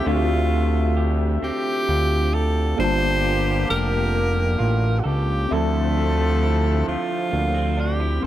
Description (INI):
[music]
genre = slow six-eight R&B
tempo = 44 BPM (dotted quarters)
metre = 6/8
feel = straight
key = D minor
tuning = A4 = 442 Hz
[part]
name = breathy tenor saxophone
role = melody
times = 0.0-8.3 s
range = F4 to C5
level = -25 LUFS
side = equal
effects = ping-pong delay
[part]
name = electric guitar through a small old amp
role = second line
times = 0.0-8.3 s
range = D3 to C5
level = -30 LUFS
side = right 7 dB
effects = none
[part]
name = tine electric piano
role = accompaniment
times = 0.0-8.3 s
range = F3 to A5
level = -28 LUFS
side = left 1 dB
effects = overdrive, fast stereo tremolo
[part]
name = clear horn section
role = stabs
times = 0.0-7.7 s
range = C3 to E5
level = -31 LUFS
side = left 4 dB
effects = none
[part]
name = fat analog bass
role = bass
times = 0.1-8.3 s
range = F1 to D2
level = -21 LUFS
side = equal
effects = none
[sound]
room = light reverb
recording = none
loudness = -19 LUFS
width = side -13 dB against mid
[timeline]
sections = 0.0-8.2 A section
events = none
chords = 0.0 Dm11; 2.8 Gm9; 5.5 Dm9